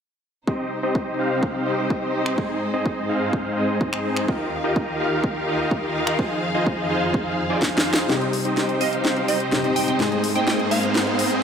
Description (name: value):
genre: EDM, festival progressive house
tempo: 126 BPM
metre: 4/4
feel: straight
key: unclear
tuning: A4 = 440 Hz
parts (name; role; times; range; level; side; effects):
- warm studio string section; sustained chords; 0.5-11.4 s; Eb2 to F5; -28 LUFS; left 1 dB; sidechain pumping
- supersaw chords; riff; 0.5-11.4 s; C4 to F5; -23 LUFS; equal; sidechain pumping, low-pass filter, tape echo
- electronic kick drum; drums; 0.5-7.7 s; none; -24 LUFS; equal; overdrive, high-pass filter on kick, studio reverb
- house drum kit; drums; 2.3-11.4 s; finger snaps, hi-hat, snare drum; -25 LUFS; equal; overdrive, studio reverb
- dark grand piano; accompaniment; 8.1-11.4 s; Ab2 to Ab4; -26 LUFS; left 4 dB; vintage 12-bit sampler grit, sidechain pumping, tape echo
- riser; sound effects; 9.0-11.4 s; none; -28 LUFS; right 2 dB; none
- glassy wavetable pluck; melody; 8.8-10.8 s; Eb5 to G5; -27 LUFS; right 6 dB; chorus, tape echo
room: moderate huge ambient reverb, RT60 4.1 s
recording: none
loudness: -20 LUFS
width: side -7 dB against mid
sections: 0.5-8.1 A section; 8.1-11.4 B section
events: drum fill 7.6-8.1, 8.1-11.4; build-up 8.1-11.4; filter sweep on supersaw synth 8.1-11.4; riser 9.0-11.4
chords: 0.5 Cm; 2.4 Ab; 4.3 Ebadd9; 6.2 Fm7; 8.1 Cm; 10.0 Ab